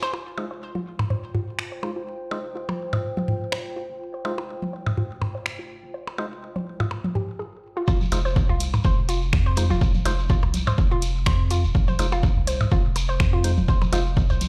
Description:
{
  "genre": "minimal techno",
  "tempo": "124 BPM",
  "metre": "4/4",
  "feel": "swing 55% on 16ths",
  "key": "F minor",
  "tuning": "A4 = 440 Hz",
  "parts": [
    { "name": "hollow square pluck", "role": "riff", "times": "0.0-14.3 s", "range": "F4 to C5", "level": "-34 LUFS", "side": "equal", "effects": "chorus, phaser, sidechain pumping, digital delay" },
    { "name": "electronic percussion blips and toms", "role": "percussion", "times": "0.0-14.5 s", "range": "none", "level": "-30 LUFS", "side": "equal", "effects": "digital delay" },
    { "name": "shekere", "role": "percussion", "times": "0.0-0.1, 7.9-14.5 s", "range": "none", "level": "-39 LUFS", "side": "equal", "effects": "none" },
    { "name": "warbly tape-like pad", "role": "texture", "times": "0.0-7.4 s", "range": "F4 to Ab5", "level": "-39 LUFS", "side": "equal", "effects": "chorus, built-in reverb, sidechain pumping" },
    { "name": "percussive organ stab", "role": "stabs", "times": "0.4-14.0 s", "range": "Ab3 to C5", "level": "-35 LUFS", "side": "equal", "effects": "chorus, digital delay" },
    { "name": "punchy sub bass", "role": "bass", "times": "0.4-14.5 s", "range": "Eb1 to F2", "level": "-28 LUFS", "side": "equal", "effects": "sidechain pumping, high-pass filter" },
    { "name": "punchy analog drum machine", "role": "drums", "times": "1.6-14.5 s", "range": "finger snaps, hi-hat", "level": "-32 LUFS", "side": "equal", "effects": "none" },
    { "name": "electronic kick drum", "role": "drums", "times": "7.9-14.3 s", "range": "none", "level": "-24 LUFS", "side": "equal", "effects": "none" }
  ],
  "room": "digital ambience",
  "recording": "played on a big sound system in a bare room, stone room reverb",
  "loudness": "-24 LUFS",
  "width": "mono",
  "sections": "0.1-7.9 A section; 7.9-14.5 B section",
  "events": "filter sweep on synth stab 0.1-7.9; break 7.4-7.9; drop 7.9-14.5",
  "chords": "0.1 F5; 7.9 Fm7"
}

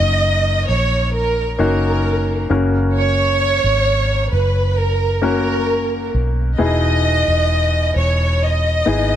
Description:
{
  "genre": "pop ballad",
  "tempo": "66 BPM",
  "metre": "4/4",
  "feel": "straight",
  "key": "unclear",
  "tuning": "A4 = 440 Hz",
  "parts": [
    { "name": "warm studio violin section", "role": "melody", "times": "0.0-9.2 s", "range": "A#4 to D#5", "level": "-18 LUFS", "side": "right 1 dB", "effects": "none" },
    { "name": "clear baby grand piano", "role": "accompaniment", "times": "0.0-9.2 s", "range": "B2 to A#4", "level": "-22 LUFS", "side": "left 3 dB", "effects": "none" },
    { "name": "vintage muted fingered electric bass", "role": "bass", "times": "0.0-9.2 s", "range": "E1 to B1", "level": "-18 LUFS", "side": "equal", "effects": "none" }
  ],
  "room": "light reverb, small room ambience",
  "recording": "none",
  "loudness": "-15 LUFS",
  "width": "side -10 dB against mid",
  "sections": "0.0-9.2 A section",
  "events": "none",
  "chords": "0.0 D#m7/F#; 2.5 F#; 6.6 Emaj7"
}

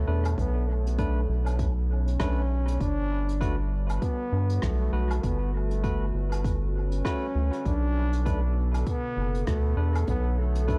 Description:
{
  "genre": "ambient dub",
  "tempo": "99 BPM",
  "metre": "4/4",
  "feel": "swing 58% on 16ths",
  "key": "B minor",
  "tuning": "A4 = 436 Hz",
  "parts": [
    { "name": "mellow trombone", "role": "melody", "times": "0.0-10.8 s", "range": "A3 to D4", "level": "-36 LUFS", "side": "equal", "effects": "dub echo" },
    { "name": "warbly tape-like pad", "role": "sustained chords", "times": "0.0-10.8 s", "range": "B2 to C#5", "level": "-41 LUFS", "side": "equal", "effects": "chorus, built-in reverb, vintage 12-bit sampler grit" },
    { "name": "round analog bass", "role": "bass", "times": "0.0-10.8 s", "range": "F#1 to G2", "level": "-28 LUFS", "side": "equal", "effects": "none" },
    { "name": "barky tine electric piano", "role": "stabs", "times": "0.1-10.8 s", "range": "A3 to B4", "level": "-40 LUFS", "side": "equal", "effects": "dub echo" },
    { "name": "vintage brush drum kit", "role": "drums", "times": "0.2-10.8 s", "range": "hi-hat, rim click, woodblock", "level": "-43 LUFS", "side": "equal", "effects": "dub echo" },
    { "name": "electronic kick drum", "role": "drums", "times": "0.4-10.8 s", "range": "none", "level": "-33 LUFS", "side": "equal", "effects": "none" }
  ],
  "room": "small room ambience",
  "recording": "none",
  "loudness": "-27 LUFS",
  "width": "mono",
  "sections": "0.0-10.8 A section",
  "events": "none",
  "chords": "0.0 Bm7; 2.8 Gmaj9; 7.7 Bm7"
}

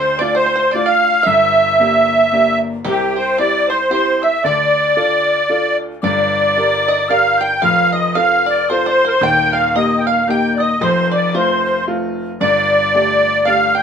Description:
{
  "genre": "celtic folk, Celtic waltz",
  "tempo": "113 BPM",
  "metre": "3/4",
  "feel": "swing 58% on 8ths",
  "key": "D minor, G minor from 6.0 s",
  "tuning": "A4 = 440 Hz",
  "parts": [
    { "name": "musette accordion", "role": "melody", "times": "0.0-13.8 s", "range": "G4 to G5", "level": "-14 LUFS", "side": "equal", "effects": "none" },
    { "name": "bluegrass banjo", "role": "second line", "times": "0.0-13.8 s", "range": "G4 to G5", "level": "-23 LUFS", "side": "right 5 dB", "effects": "none" },
    { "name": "mellow wooden whistle", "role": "second line", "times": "0.0-13.8 s", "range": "G5 to G6", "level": "-22 LUFS", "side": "left 5 dB", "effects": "none" },
    { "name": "bright upright piano", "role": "accompaniment", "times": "0.0-13.8 s", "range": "Eb1 to Bb4", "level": "-20 LUFS", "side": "left 1 dB", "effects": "none" }
  ],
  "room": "wet studio ambience, RT60 0.5 s",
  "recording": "band playing live in one room",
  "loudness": "-12 LUFS",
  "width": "side -7 dB against mid",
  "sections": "0.0-6.0 A section; 6.0-13.8 B section",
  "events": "none",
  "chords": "0.0 Dm; 1.3 Gm; 2.8 C; 4.4 Dm; 6.0 Gm; 7.6 F; 9.2 Eb; 10.8 F; 12.4 Gsus2"
}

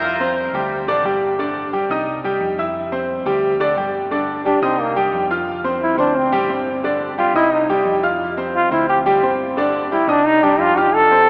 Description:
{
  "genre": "latin",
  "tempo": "176 BPM",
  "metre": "4/4",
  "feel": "straight",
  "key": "unclear",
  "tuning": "A4 = 440 Hz",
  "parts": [
    { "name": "bright concert grand piano", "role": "accompaniment", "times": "0.0-11.3 s", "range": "D3 to F6", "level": "-21 LUFS", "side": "equal", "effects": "none" },
    { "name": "hollow-body short-scale fingered electric bass", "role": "bass", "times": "0.0-11.3 s", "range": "G1 to F2", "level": "-37 LUFS", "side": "equal", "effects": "none" },
    { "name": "bright trombone", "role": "melody", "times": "4.5-11.3 s", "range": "Bb3 to A4", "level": "-19 LUFS", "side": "equal", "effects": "none" }
  ],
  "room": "wet cathedral reverb, RT60 5.0 s",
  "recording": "recorded in a church or concert hall, AM radio sound",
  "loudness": "-18 LUFS",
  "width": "mono",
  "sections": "0.0-4.1 A section; 4.1-11.3 B section",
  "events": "trombone solo 4.1-11.3",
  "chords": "0.0 Fsus2; 0.7 Dsus4; 1.4 G5; 2.1 Cm; 2.8 Fsus2; 3.4 Dsus4; 4.1 G5; 4.8 Cm; 5.5 F5; 6.2 D7sus4; 6.8 G5; 7.5 Cm; 8.2 F5; 8.9 D7sus4; 9.6 G5; 10.3 Cm"
}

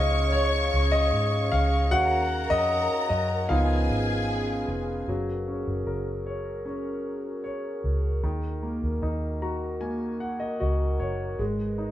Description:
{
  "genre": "pop",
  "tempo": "76 BPM",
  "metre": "4/4",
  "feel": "straight",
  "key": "F# major",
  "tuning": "A4 = 440 Hz",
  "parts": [
    { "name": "warm studio violin section", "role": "second line", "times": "0.0-5.0 s", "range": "G#4 to C#6", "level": "-31 LUFS", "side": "left 2 dB", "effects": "none" },
    { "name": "clear concert grand piano", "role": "accompaniment", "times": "0.0-11.9 s", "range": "D#3 to A#5", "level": "-28 LUFS", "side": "left 1 dB", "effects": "none" },
    { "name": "glass harmonica", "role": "sustained chords", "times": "0.0-11.9 s", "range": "G#3 to E#5", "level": "-33 LUFS", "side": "equal", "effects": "none" },
    { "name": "vintage muted fingered electric bass", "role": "bass", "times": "0.0-11.9 s", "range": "E#1 to G#2", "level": "-27 LUFS", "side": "equal", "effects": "none" }
  ],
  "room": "moderate large studio reverb, RT60 1.0 s",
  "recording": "band playing live in one room",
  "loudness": "-24 LUFS",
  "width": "side -13 dB against mid",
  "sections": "0.0-5.1 A section; 5.1-11.9 B section",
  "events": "grand piano solo 0.0-5.1; grand piano fill 9.0-11.4",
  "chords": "0.0 C#add9; 1.9 D#m7; 3.5 C#7; 5.1 F#add9; 8.2 D#m; 11.4 G#m"
}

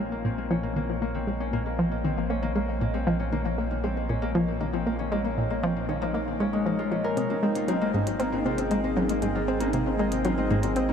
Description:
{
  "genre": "ambient, sequencer-driven space music",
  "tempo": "117 BPM",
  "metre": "4/4",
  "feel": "straight",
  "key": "Bb minor",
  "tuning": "A4 = 440 Hz",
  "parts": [
    { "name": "sweeping resonant pad", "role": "sustained chords", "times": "0.0-10.9 s", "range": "Bb2 to C5", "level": "-33 LUFS", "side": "right 1 dB", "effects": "chorus" },
    { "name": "Celtic harp", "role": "arpeggios", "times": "0.0-10.9 s", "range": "Ab3 to Bb4", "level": "-30 LUFS", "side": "left 4 dB", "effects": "auto-pan, low-pass filter, ping-pong delay" },
    { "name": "analog pluck", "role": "riff", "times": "0.0-10.9 s", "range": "Ab2 to C4", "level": "-28 LUFS", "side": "equal", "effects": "chorus, ping-pong delay" },
    { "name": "round analog bass", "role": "bass", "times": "0.0-10.9 s", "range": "Ab1 to Bb1", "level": "-33 LUFS", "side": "right 1 dB", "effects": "none" },
    { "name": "pulsing gated texture", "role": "texture", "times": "0.0-10.9 s", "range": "Eb5", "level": "-39 LUFS", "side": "right 4 dB", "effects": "chorus, built-in reverb" },
    { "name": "minimal click drum kit", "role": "percussion", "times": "7.2-10.9 s", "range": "hi-hat, toms", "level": "-35 LUFS", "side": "equal", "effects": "overdrive, ping-pong delay" }
  ],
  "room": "wet huge ambient reverb, RT60 7.8 s",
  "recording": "dreamy mix soaked in reverb",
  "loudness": "-24 LUFS",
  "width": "side -7 dB against mid",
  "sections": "0.0-10.9 A section",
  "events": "fade-in on analog synth pad 0.0-10.9; fade-in on synth texture 0.0-10.9; filter sweep on synth arpeggio sound 0.0-10.9",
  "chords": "0.0 Bbmadd9; 7.2 Ab"
}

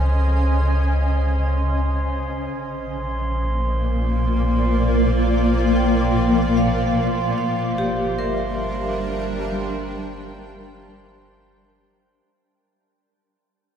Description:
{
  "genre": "ambient",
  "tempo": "free time",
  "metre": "none",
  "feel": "none",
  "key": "unclear",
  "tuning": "A4 = 437 Hz",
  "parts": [
    { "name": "shimmering ambient pad", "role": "sustained chords", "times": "0.0-12.3 s", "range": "Bb2 to A5", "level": "-22 LUFS", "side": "left 1 dB", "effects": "chorus, built-in reverb" },
    { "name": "vibraphone with medium hard mallets", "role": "arpeggios", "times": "0.0-0.8, 5.8-12.3 s", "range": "F3 to G5", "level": "-27 LUFS", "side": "right 2 dB", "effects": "tape echo" },
    { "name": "warm sub bass", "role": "bass", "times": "0.0-12.2 s", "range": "G1 to Db2", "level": "-22 LUFS", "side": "equal", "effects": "none" },
    { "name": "glass harmonica", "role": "texture", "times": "0.0-12.3 s", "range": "C5 to C6", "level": "-30 LUFS", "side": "right 3 dB", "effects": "none" }
  ],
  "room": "wet huge ambient reverb, RT60 7.6 s",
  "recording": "none",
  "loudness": "-18 LUFS",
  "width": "side -8 dB against mid",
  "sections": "0.0-12.3 A section",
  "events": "fade-in on ambient pad 0.0-12.3; fade-in on vibraphone 0.0-12.3; fade-in on glass harmonica 0.0-12.3; fade-out 5.8-12.3",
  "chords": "0.0 Dbsus2; 2.5 Bb; 7.4 Gmadd9"
}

